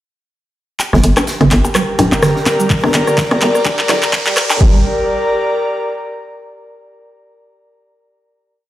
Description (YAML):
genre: minimal techno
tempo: 126 BPM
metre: 4/4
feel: swing 56% on 16ths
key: G minor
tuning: A4 = 439 Hz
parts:
  - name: modern studio drum kit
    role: drums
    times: 0.8-4.6 s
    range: hi-hat, snare drum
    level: -29 LUFS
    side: right 1 dB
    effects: none
  - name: punchy analog drum machine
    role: drums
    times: 0.8-4.6 s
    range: handclaps, hi-hat, rim click, shaker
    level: -18 LUFS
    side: equal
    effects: overdrive, high-pass filter on snare, high-pass filter on perc, high-pass filter on hats
  - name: electronic percussion blips and rim click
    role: percussion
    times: 0.8-4.6 s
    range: none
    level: -18 LUFS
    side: left 1 dB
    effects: digital delay
  - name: riser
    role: sound effects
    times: 1.6-4.6 s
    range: none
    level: -26 LUFS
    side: right 2 dB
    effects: none
  - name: airy breathy pad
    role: texture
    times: 1.2-6.5 s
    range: G4 to Bb5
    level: -18 LUFS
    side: left 1 dB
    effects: chorus, sidechain pumping
  - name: resonant blip pluck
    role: riff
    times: 0.9-4.8 s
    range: D3 to D4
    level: -19 LUFS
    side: right 2 dB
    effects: phaser, sidechain pumping, dub echo
  - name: hollow knocking FM bass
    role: bass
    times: 0.9-4.8 s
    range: D1 to G1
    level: -14 LUFS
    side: equal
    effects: sidechain pumping
  - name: electronic kick drum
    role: drums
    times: 2.7-4.7 s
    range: none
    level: -13 LUFS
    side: equal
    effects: none
room: moderate studio reverb, RT60 0.6 s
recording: played on a big sound system in a bare room, stone room reverb, high-pass filter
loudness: -11 LUFS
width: side -14 dB against mid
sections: 0.8-4.6 build; 4.6-6.5 final chord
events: build-up 0.8-4.6; drum fill 0.8-4.6; filter sweep on synth pluck 0.8-4.6; filter sweep 0.8-4.6; riser 1.6-4.6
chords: 0.8 Gm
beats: | 0.80 1.27 1.75 2.23 | 2.70 3.18 3.65 4.13 | 4.61 5.08 5.56 6.04